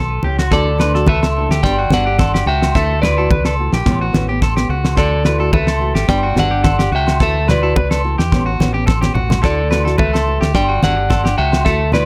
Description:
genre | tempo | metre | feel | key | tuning
highlife guitar band | 108 BPM | 4/4 | straight | D major | A4 = 440 Hz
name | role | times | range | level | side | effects
electric guitar at the edge of break-up | arpeggios | 0.0-12.1 s | F#4 to B4 | -25 LUFS | equal | tape echo
deep dub fingered electric bass | bass | 0.0-12.1 s | G1 to E2 | -21 LUFS | equal | none
nylon-string guitar | accompaniment | 0.2-12.1 s | E3 to G4 | -27 LUFS | equal | none
congas | percussion | 0.2-12.1 s | none | -23 LUFS | equal | none
damped 70s drum kit | drums | 0.4-12.1 s | kick drum, snare drum | -19 LUFS | equal | none
agogo bells | percussion | 0.4-12.1 s | none | -30 LUFS | equal | none
clean electric guitar | melody | 0.5-12.1 s | A4 to G5 | -20 LUFS | equal | none
room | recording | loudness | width
little or no reverb | none | -15 LUFS | mono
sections
0.5-12.1 A section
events
drum fill 8.9-9.4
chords
0.0 Aadd9; 0.5 Dadd9; 1.6 G; 2.7 Dadd9; 3.9 Aadd9; 5.0 Dadd9; 6.1 G; 7.2 Dadd9; 8.3 Aadd9; 9.4 Dadd9; 10.5 G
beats
| 0.52 1.07 1.63 2.19 | 2.75 3.31 3.86 4.42 | 4.98 5.54 6.09 6.65 | 7.21 7.76 8.32 8.88 | 9.43 9.99 10.54 11.10 | 11.66

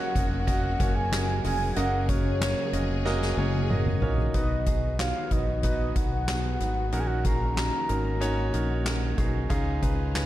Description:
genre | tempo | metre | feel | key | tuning
piano-driven pop | 93 BPM | 4/4 | straight | F# major | A4 = 442 Hz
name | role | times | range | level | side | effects
mellow horn-like synth lead | melody | 0.0-9.1 s | C#5 to A#5 | -32 LUFS | equal | chorus
clear concert grand piano | accompaniment | 0.0-10.3 s | G#2 to D#5 | -31 LUFS | right 2 dB | none
warm studio string section | sustained chords | 0.0-10.3 s | C#3 to G#4 | -36 LUFS | left 2 dB | none
fingered electric bass | bass | 0.2-10.3 s | E#1 to C#2 | -28 LUFS | equal | none
soft-mallet drum kit | drums | 0.2-10.3 s | handclaps, hi-hat, kick drum, snare drum, toms | -29 LUFS | equal | none
room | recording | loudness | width
small room ambience | dark, warm production | -24 LUFS | side -14 dB against mid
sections
0.0-4.3 A section; 4.3-10.3 B section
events
drum fill 3.1-4.3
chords
0.0 F#; 4.3 F#6; 9.5 C#add9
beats
0.47 1.12 | 1.76 2.41 3.06 3.70 | 4.35 4.99 5.64 6.28 | 6.93 7.57 8.22 8.86 | 9.51 10.15

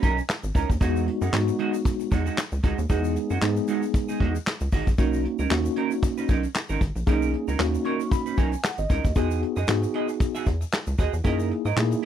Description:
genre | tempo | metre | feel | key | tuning
early-eighties boogie funk | 115 BPM | 4/4 | swing 56% on 16ths | unclear | A4 = 440 Hz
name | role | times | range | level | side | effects
mellow tine electric piano | accompaniment | 0.0-12.1 s | G#3 to C#6 | -26 LUFS | left 1 dB | medium stereo tremolo
semi-hollow electric guitar | riff | 0.0-12.1 s | G#3 to E5 | -30 LUFS | right 8 dB | lush chorus
rubbery square bass | bass | 0.0-11.9 s | G#1 to A#2 | -26 LUFS | equal | none
vintage brush drum kit | drums | 0.0-12.1 s | handclaps, hi-hat, kick drum, snare drum | -24 LUFS | equal | none
tube shaker | percussion | 0.0-12.0 s | none | -46 LUFS | left 23 dB | none
room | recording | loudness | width
little or no reverb | dry, close 1970s-style studio recording | -22 LUFS | side -10 dB against mid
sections
0.0-12.1 A section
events
tine electric piano fill 7.6-9.2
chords
0.0 Bmaj9; 0.8 Emaj9; 5.0 Bmaj9; 9.2 Emaj9; 11.2 F#13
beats
0.29 | 0.81 1.33 1.85 2.38 | 2.90 3.42 3.94 4.46 | 4.99 5.51 6.03 6.55 | 7.07 7.59 8.12 8.64 | 9.16 9.68 10.20 10.72 | 11.25 11.77

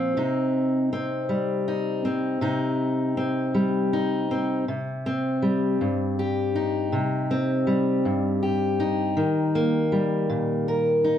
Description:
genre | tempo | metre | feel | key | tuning
folk, solo fingerstyle acoustic guitar | 53 BPM (dotted quarters) | 6/8 | straight | C minor | A4 = 442 Hz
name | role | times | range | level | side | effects
fingerpicked steel-string acoustic guitar | solo | 0.0-11.2 s | G2 to Bb4 | -22 LUFS | left 1 dB | none
room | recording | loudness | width
light reverb | none | -22 LUFS | side -9 dB against mid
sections
0.0-4.7 A section; 4.7-11.2 B section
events
none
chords
0.2 Cm; 9.2 Eb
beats
| 0.17 1.29 | 2.42 3.55 | 4.68 5.81 | 6.93 8.05 | 9.17 10.29

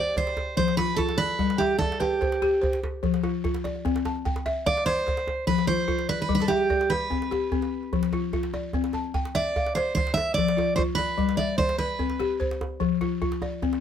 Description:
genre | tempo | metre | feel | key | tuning
west african traditional, West African string and xylophone music | 98 BPM (dotted quarters) | 12/8 | straight | unclear | A4 = 440 Hz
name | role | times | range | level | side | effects
picked steel-string acoustic guitar | melody | 0.0-12.4 s | G4 to E5 | -25 LUFS | right 3 dB | none
balafon | arpeggios | 0.0-13.8 s | F3 to A5 | -27 LUFS | left 6 dB | none
djembe | percussion | 0.2-13.8 s | none | -31 LUFS | right 2 dB | none
room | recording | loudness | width
light reverb | none | -23 LUFS | side -9 dB against mid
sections
0.0-13.8 A section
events
none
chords
0.2 F5; 1.4 G; 2.6 F5; 3.8 C; 5.1 F5; 6.3 G; 7.5 F5; 8.7 C; 10.0 F5; 11.2 G; 12.4 F5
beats
0.17 0.79 | 1.40 2.01 2.62 3.24 | 3.85 4.46 5.07 5.68 | 6.30 6.91 7.52 8.13 | 8.74 9.35 9.96 10.57 | 11.19 11.80 12.41 13.02 | 13.63

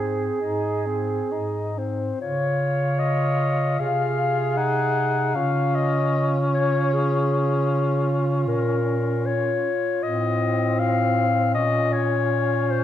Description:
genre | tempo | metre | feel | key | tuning
classical, lyrical piece for single-reed quartet | 77 BPM | 4/4 | rubato | Db major | A4 = 442 Hz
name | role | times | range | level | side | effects
dark clarinet | melody | 0.0-12.8 s | Ab4 to Gb5 | -25 LUFS | left 5 dB | none
clear alto saxophone | second line | 0.0-12.8 s | F4 to Db5 | -28 LUFS | right 6 dB | none
mellow tenor saxophone | accompaniment | 0.0-12.8 s | C4 to F4 | -27 LUFS | left 2 dB | none
warm bass clarinet | bass | 0.0-12.8 s | Ab2 to Db3 | -25 LUFS | equal | none
room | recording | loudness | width
moderate scoring stage reverb, RT60 1.7 s | dark, warm production | -20 LUFS | side -11 dB against mid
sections
0.0-2.2 A section; 2.2-12.8 B section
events
none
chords
0.0 Ab; 2.2 Db; 3.8 Ab7/C; 5.4 Db; 8.5 Bbm; 10.0 F7/A; 11.5 Bbm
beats
0.41 1.33 | 2.22 3.00 3.79 4.57 | 5.35 6.14 6.93 7.70 | 8.48 9.26 10.03 10.80 | 11.55 12.32

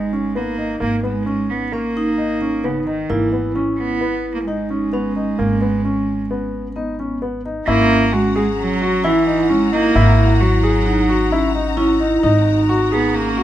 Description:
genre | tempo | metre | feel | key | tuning
contemporary instrumental, chamber music in an uneven meter | 131 BPM | 5/4 | straight | unclear | A4 = 439 Hz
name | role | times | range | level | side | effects
rich cello | melody | 0.0-13.4 s | C#3 to B3 | -21 LUFS | right 4 dB | none
vibraphone with medium mallets | second line | 0.0-13.4 s | B3 to E4 | -21 LUFS | right 1 dB | none
warm concert grand piano | arpeggios | 0.0-13.4 s | A#3 to G#4 | -22 LUFS | left 2 dB | none
upright bass | bass | 0.0-13.4 s | G#1 | -22 LUFS | equal | none
rich studio string section | sustained chords | 7.7-13.4 s | F#4 to A#5 | -27 LUFS | left 3 dB | none
room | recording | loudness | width
light reverb | close, detailed microphones | -15 LUFS | side -12 dB against mid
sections
0.0-7.7 A section; 7.7-13.4 B section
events
none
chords
0.0 G#madd9; 7.7 F#7/G#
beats
0.36 | 0.82 1.27 1.73 2.19 2.64 | 3.10 3.56 4.02 4.47 4.93 | 5.39 5.85 6.30 6.76 7.22 | 7.68 8.13 8.59 9.04 9.50 | 9.96 10.41 10.87 11.32 11.78 | 12.23 12.69 13.15

